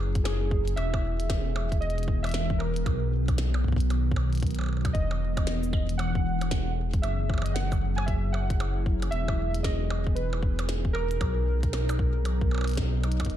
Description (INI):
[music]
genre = IDM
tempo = 115 BPM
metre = 4/4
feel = swing 62% on 16ths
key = E lydian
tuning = A4 = 441 Hz
[part]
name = glassy FM pad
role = sustained chords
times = 0.0-13.4 s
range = D#3 to D#5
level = -34 LUFS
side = equal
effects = ensemble chorus, built-in reverb
[part]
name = dark detuned saw bass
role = bass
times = 0.0-13.4 s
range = E1 to B1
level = -28 LUFS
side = equal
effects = tube saturation
[part]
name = warbly lo-fi synth keys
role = melody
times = 0.2-12.7 s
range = G#4 to G#5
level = -34 LUFS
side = right 2 dB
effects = chorus, vintage 12-bit sampler grit, ping-pong delay
[part]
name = electronic kick drum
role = drums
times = 0.2-13.3 s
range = none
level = -30 LUFS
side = equal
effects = none
[part]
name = glitchy drum kit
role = drums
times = 0.2-13.4 s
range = hi-hat, percussion blips, shaker, snare drum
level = -37 LUFS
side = right 1 dB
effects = none
[sound]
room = little or no reverb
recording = dark, warm production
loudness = -25 LUFS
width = side -11 dB against mid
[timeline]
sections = 0.0-13.3 A section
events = band accent 12.8; drum fill 13.0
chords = 0.0 F#7sus2; 0.8 Emaj7; 2.9 Bmaj7; 4.9 Emaj7; 7.0 F#9sus4; 9.1 Emaj7; 11.2 Bmaj7